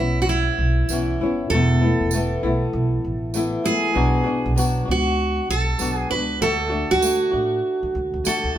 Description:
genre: acoustic pop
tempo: 98 BPM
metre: 4/4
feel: swing 60% on 16ths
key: A major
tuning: A4 = 445 Hz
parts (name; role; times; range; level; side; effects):
- picked steel-string acoustic guitar; melody; 0.0-8.6 s; E4 to B4; -22 LUFS; right 2 dB; none
- flamenco guitar; accompaniment; 0.0-8.6 s; E2 to F#4; -24 LUFS; left 3 dB; none
- upright bass; bass; 0.0-8.6 s; E1 to D3; -23 LUFS; right 1 dB; none
- tambourine; percussion; 0.9-8.4 s; none; -30 LUFS; right 6 dB; none
room: moderate large studio reverb, RT60 0.9 s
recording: band playing live in one room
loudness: -18 LUFS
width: side -11 dB against mid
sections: 0.0-8.6 A section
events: none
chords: 0.0 Aadd9 (rootless); 1.5 Esus4; 3.9 Bm; 6.4 D

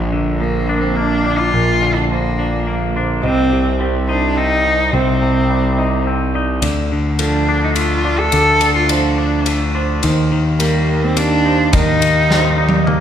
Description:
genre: post-rock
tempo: 106 BPM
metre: 3/4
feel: straight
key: unclear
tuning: A4 = 439 Hz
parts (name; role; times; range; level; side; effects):
- felt-muted upright piano; arpeggios; 0.0-13.0 s; A4 to Eb5; -26 LUFS; right 5 dB; none
- twangy electric guitar; arpeggios; 0.0-13.0 s; Bb2 to Eb4; -21 LUFS; left 3 dB; phaser
- fuzz picked electric bass; bass; 0.0-13.0 s; Bb1 to Eb2; -18 LUFS; equal; overdrive
- rich cello; melody; 0.4-12.8 s; Bb3 to A4; -17 LUFS; right 1 dB; none
- big rock drum kit; drums; 6.6-13.0 s; kick drum, ride cymbal, snare drum, toms; -22 LUFS; equal; none
room: moderate scoring stage reverb, RT60 1.8 s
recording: recorded in a church or concert hall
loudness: -13 LUFS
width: side -9 dB against mid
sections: 0.0-13.0 A section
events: drum fill 12.3-13.0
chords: 0.0 Bb; 3.2 Cm; 6.6 Dm; 10.0 Eb

